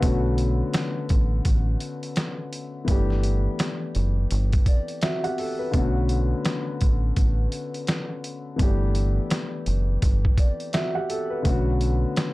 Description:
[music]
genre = hip hop, boom-bap hip-hop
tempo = 84 BPM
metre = 4/4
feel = swing 62% on 16ths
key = B minor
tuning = A4 = 437 Hz
[part]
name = dark grand piano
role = accompaniment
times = 0.0-12.3 s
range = D3 to F#5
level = -28 LUFS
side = left 2 dB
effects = none
[part]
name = deep dub fingered electric bass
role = bass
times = 0.0-12.0 s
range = F#1 to B1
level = -23 LUFS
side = equal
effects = none
[part]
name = trip hop sampler-style drum kit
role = drums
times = 0.0-12.3 s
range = hi-hat, kick drum, snare drum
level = -23 LUFS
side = equal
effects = none
[sound]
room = light reverb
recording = dark, warm production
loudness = -21 LUFS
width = side -20 dB against mid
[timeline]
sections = 0.0-12.3 A section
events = none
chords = 0.0 Bm7; 2.9 G6; 5.7 Bm7; 8.6 G6; 11.5 Bm7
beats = | 0.03 0.74 1.45 2.17 | 2.88 3.60 4.31 5.03 | 5.74 6.45 7.17 7.88 | 8.60 9.31 10.03 10.74 | 11.45 12.17

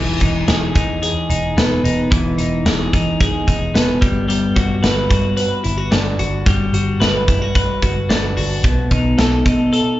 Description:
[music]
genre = jangly indie pop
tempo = 110 BPM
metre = 4/4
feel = straight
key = unclear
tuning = A4 = 440 Hz
[part]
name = twelve-string electric guitar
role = arpeggios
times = 0.0-10.0 s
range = B2 to B4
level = -18 LUFS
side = left 1 dB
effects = digital delay, plate reverb
[part]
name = vintage muted picked electric bass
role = bass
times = 0.0-9.8 s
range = E1 to B2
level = -21 LUFS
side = equal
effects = none
[part]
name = big rock drum kit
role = drums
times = 0.2-9.9 s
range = hi-hat, kick drum, snare drum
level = -18 LUFS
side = equal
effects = none
[sound]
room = moderate club reverb, RT60 0.6 s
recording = live gig heard through the venue's PA, club reverb, nothing above 7.6 kHz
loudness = -14 LUFS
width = side -15 dB against mid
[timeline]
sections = 0.0-10.0 A section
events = none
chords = 0.0 Emaj7; 4.0 Gmaj7; 8.6 B7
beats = 0.49 1.03 1.58 | 2.12 2.66 3.20 3.75 | 4.29 4.83 5.38 5.92 | 6.46 7.00 7.55 8.09 | 8.64 9.18 9.72

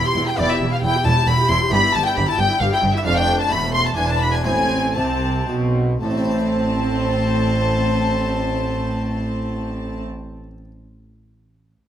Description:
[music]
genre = classical, baroque-style concerto movement with solo episodes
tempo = 111-136 BPM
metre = 3/4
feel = straight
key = A minor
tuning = A4 = 439 Hz
[part]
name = dark violin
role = melody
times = 0.0-10.0 s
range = C5 to C6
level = -23 LUFS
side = left 1 dB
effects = none
[part]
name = warm chamber violin section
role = melody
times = 0.0-10.0 s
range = D5 to C6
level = -26 LUFS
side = left 4 dB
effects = none
[part]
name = rich chamber violin section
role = second line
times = 0.0-10.0 s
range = D5 to C6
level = -28 LUFS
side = equal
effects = none
[part]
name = harpsichord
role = accompaniment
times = 0.0-10.7 s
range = E2 to E5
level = -29 LUFS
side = right 1 dB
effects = none
[part]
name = rich chamber viola section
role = accompaniment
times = 0.0-10.0 s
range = A3 to G4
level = -26 LUFS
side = left 1 dB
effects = none
[part]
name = warm chamber cello section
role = bass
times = 0.0-10.0 s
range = E2 to C3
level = -24 LUFS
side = right 2 dB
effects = none
[part]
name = rich chamber double bass section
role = bass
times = 0.2-10.0 s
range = E1 to C2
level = -23 LUFS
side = right 1 dB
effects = none
[sound]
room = moderate recital hall reverb, RT60 1.6 s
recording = close, detailed microphones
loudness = -17 LUFS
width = side -10 dB against mid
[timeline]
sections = 0.0-6.0 A section; 6.0-9.3 B section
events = slowing down 2.4-6.0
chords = 0.4 Em; 1.7 Em/G; 3.1 Dm/F; 3.5 A5/E; 4.0 E5; 4.5 Am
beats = | 0.39 0.83 1.28 | 1.72 2.16 2.61 | 3.06 3.51 3.97 | 4.46 4.97 5.49 | 6.02 6.56 7.10 | 7.64 8.18 8.72

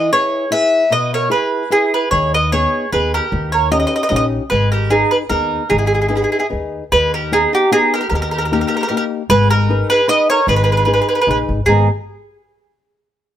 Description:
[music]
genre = italian folk, Italian serenade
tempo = 151 BPM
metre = 3/4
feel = swing 54% on 8ths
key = G# harmonic minor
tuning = A4 = 435 Hz
[part]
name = mandolin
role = melody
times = 0.0-11.9 s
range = G4 to E5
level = -15 LUFS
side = right 1 dB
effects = plate reverb
[part]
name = mandolin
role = second line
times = 0.0-11.9 s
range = D#4 to B4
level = -23 LUFS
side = right 7 dB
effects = none
[part]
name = nylon-string guitar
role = accompaniment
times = 0.0-11.9 s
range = G#2 to B4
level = -21 LUFS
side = left 4 dB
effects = none
[part]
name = upright bass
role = bass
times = 2.1-11.9 s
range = G#1 to D#2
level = -19 LUFS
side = equal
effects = none
[sound]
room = light reverb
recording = none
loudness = -13 LUFS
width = side -10 dB against mid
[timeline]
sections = 0.0-6.9 A section; 6.9-11.7 B section; 11.7-12.9 C section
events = none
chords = 0.0 E; 2.1 G#m/D#; 3.3 D#7; 4.5 G#m; 6.9 G#m/D#; 8.1 D#; 9.3 G#m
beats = 0.12 0.51 | 0.91 1.31 1.72 | 2.12 2.53 2.93 | 3.33 3.72 4.12 | 4.51 4.90 5.30 | 5.70 6.10 6.51 | 6.92 7.32 7.71 | 8.11 8.51 8.90 | 9.29 9.68 10.07 | 10.46 10.86 11.26 | 11.67

